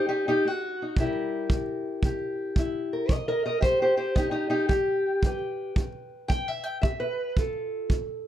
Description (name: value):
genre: acoustic country blues, solo or duo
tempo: 112 BPM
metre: 4/4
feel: swing 67% on 8ths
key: C mixolydian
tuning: A4 = 438 Hz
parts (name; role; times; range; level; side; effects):
- fingerpicked steel-string acoustic guitar; melody; 0.0-8.3 s; C3 to G5; -26 LUFS; left 1 dB; plate reverb
- kick drum; drums; 1.0-8.1 s; none; -26 LUFS; right 1 dB; none
room: moderate studio reverb, RT60 0.5 s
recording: dark, warm production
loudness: -24 LUFS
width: side -11 dB against mid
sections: 0.0-8.3 A section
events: steel-string acoustic guitar solo 0.0-8.3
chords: 0.0 F#dim7; 1.0 C7; 5.2 G; 7.4 F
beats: 0.44 | 0.97 1.50 2.04 2.57 | 3.10 3.64 4.17 4.70 | 5.24 5.77 6.30 6.84 | 7.37 7.90